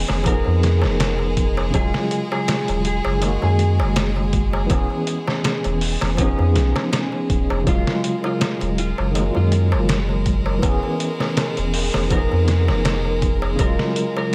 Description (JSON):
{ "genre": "trip hop", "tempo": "81 BPM", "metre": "4/4", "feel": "swing 54% on 16ths", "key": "unclear", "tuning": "A4 = 435 Hz", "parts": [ { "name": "overdriven tine electric piano", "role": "accompaniment", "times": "0.0-14.3 s", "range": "Db3 to G#4", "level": "-26 LUFS", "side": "equal", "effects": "fast tremolo, harmonic tremolo" }, { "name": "clear chamber violin section", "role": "sustained chords", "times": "0.0-14.3 s", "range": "Ab3 to Bb4", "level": "-32 LUFS", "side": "equal", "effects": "none" }, { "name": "soft dub sub bass", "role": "bass", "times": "0.0-13.8 s", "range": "Eb1 to Gb2", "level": "-23 LUFS", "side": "equal", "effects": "tube saturation" }, { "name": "trip hop sampler-style drum kit", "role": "drums", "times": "0.1-14.2 s", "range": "hi-hat, kick drum, snare drum", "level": "-25 LUFS", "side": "equal", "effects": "none" }, { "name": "darbuka", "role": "percussion", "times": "0.1-14.3 s", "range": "none", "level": "-32 LUFS", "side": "equal", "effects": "none" }, { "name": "electric slide guitar", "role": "melody", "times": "0.3-14.3 s", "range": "Db4 to Bb4", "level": "-30 LUFS", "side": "equal", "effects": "tape echo" } ], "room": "digital ambience", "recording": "none", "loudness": "-20 LUFS", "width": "mono", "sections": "0.0-14.3 A section", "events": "none", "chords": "0.3 Fm7b5; 1.7 Ebm11; 3.2 Gb69; 4.7 E6; 6.2 Fm7b5; 7.7 Ebm11; 9.2 Gb69; 10.6 E6; 12.1 Fm7b5; 13.6 Ebm11" }